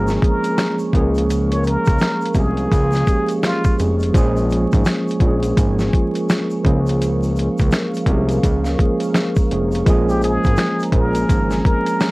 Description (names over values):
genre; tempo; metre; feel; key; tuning
lo-fi hip hop; 84 BPM; 4/4; swing 61% on 16ths; Bb minor; A4 = 440 Hz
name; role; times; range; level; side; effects
trumpet with plunger mute; melody; 0.0-3.8, 10.1-12.1 s; F4 to Db5; -24 LUFS; equal; low-pass filter
tine electric piano; accompaniment; 0.0-12.1 s; F3 to Ab4; -20 LUFS; right 1 dB; slow stereo tremolo, cassette tape, low-pass filter
dark analog pad; sustained chords; 0.1-12.1 s; Bb4 to Db6; -31 LUFS; equal; chorus, low-pass filter
fat analog bass; bass; 0.0-11.6 s; F1 to Db2; -20 LUFS; equal; none
boom bap sampler-style drum kit; drums; 0.1-12.1 s; finger snaps, hi-hat, kick drum, snare drum; -18 LUFS; equal; none
egg shaker; percussion; 0.1-12.1 s; none; -43 LUFS; left 2 dB; none
room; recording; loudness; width
light reverb; worn, warbling old tape, cassette tape, vinyl crackle, warbly pitch drift; -15 LUFS; side -22 dB against mid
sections
0.0-12.1 A section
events
none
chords
0.0 Bbm7; 0.9 Db6; 4.1 Bbm7; 6.6 Db6; 9.9 Bbm7